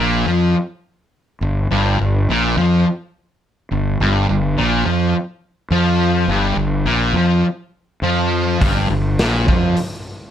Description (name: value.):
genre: blues rock power trio and southern rock.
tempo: 104 BPM.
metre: 4/4.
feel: straight.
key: G minor.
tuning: A4 = 442 Hz.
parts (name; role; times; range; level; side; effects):
fuzz guitar; riff; 0.0-9.8 s; G2 to F3; -17 LUFS; equal; distortion.
fuzz fingered electric bass; bass; 0.0-9.7 s; G1 to F2; -19 LUFS; equal; overdrive.
raw garage drum kit; drums; 8.6-9.9 s; hi-hat, kick drum, snare drum; -20 LUFS; equal; none.
room: moderate studio reverb, RT60 0.6 s.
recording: none.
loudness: -15 LUFS.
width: side -10 dB against mid.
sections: 0.0-10.3 A section.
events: none.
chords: 0.0 Gm.